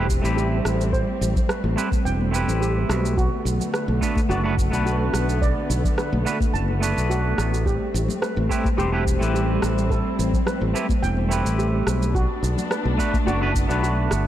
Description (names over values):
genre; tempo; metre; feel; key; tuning
sunset chillout; 107 BPM; 4/4; straight; A dorian; A4 = 440 Hz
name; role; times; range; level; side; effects
twangy electric guitar; accompaniment; 0.0-14.3 s; A3 to B5; -27 LUFS; right 1 dB; auto-pan, digital delay
muted studio string section; sustained chords; 0.0-14.3 s; D3 to D4; -28 LUFS; equal; none
fingered electric bass; bass; 0.0-14.3 s; E1 to B1; -23 LUFS; equal; none
electronic kick drum; drums; 0.1-13.7 s; none; -24 LUFS; equal; overdrive, studio reverb
electronic shaker and rim click; drums; 0.1-14.2 s; none; -32 LUFS; right 1 dB; overdrive, studio reverb
steel pan; arpeggios; 0.4-14.1 s; F#4 to A5; -30 LUFS; right 2 dB; low-pass filter, digital delay
congas; percussion; 1.4-13.2 s; none; -32 LUFS; left 4 dB; none
room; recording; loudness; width
light reverb; none; -20 LUFS; side -12 dB against mid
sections
0.0-14.3 A section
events
none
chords
0.0 Am9; 3.2 Bm7; 7.7 Am9; 12.1 Bm7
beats
0.37 | 0.93 1.49 2.05 2.61 | 3.17 3.74 4.30 4.86 | 5.42 5.98 6.54 7.10 | 7.66 8.22 8.78 9.34 | 9.90 10.46 11.03 11.59 | 12.15 12.71 13.27 13.83